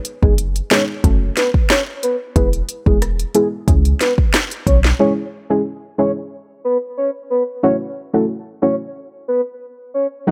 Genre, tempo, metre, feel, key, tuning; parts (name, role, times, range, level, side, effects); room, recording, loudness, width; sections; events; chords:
dancehall; 91 BPM; 4/4; straight; C# minor; A4 = 440 Hz
afro-pop drum kit; drums; 0.0-5.0 s; hi-hat, kick drum, rim click, snare drum; -19 LUFS; equal
soft octave-layered synth lead; melody; 0.2-10.3 s; G#4 to D#5; -22 LUFS; equal; chorus, tremolo, digital delay
soft round pluck; accompaniment; 0.2-10.3 s; F#3 to A4; -21 LUFS; equal; chorus, sidechain pumping
clean 808-style bass; bass; 0.2-4.9 s; E1 to C#2; -19 LUFS; equal
little or no reverb; -18 LUFS; mono
0.0-5.0 A section; 5.0-10.3 B section
0.0 G#m; 1.0 F#m; 2.4 E; 3.7 C#m; 7.6 F#m7